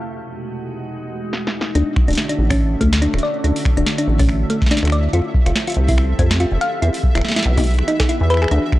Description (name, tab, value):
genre	IDM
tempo	142 BPM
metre	4/4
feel	swing 56% on 16ths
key	D major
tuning	A4 = 442 Hz
part	glassy FM pad	sustained chords	0.0-8.8 s	E2 to A4	-27 LUFS	equal	ensemble chorus, built-in reverb, sidechain pumping
part	pulsing gated texture	texture	0.0-8.8 s	E5	-32 LUFS	right 2 dB	chorus, built-in reverb
part	electro analog drum machine	drums	1.3-8.8 s	finger snaps, hi-hat, snare drum, toms	-23 LUFS	equal	low-pass filter on snare, low-pass filter on hats, low-pass filter on toms, tape echo
part	thumb-piano-like synth pluck	arpeggios	1.8-8.6 s	A3 to F5	-21 LUFS	left 1 dB	chorus, cassette tape, tape echo
part	deep acid bass	bass	1.8-8.6 s	D1 to F2	-16 LUFS	equal	tube saturation
part	electronic kick drum	drums	2.0-8.8 s	none	-18 LUFS	equal	none
room	light reverb, digital ambience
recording	dry, gritty hardware recording, low-pass filter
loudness	-15 LUFS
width	side -16 dB against mid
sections	0.0-1.8 A section; 1.8-8.8 B section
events	filter sweep 0.0-1.8; break 0.1-1.8; drum fill 1.3-1.8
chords	0.1 Emaj9; 1.8 Dmaj9; 5.1 Fmaj9; 6.8 Emaj9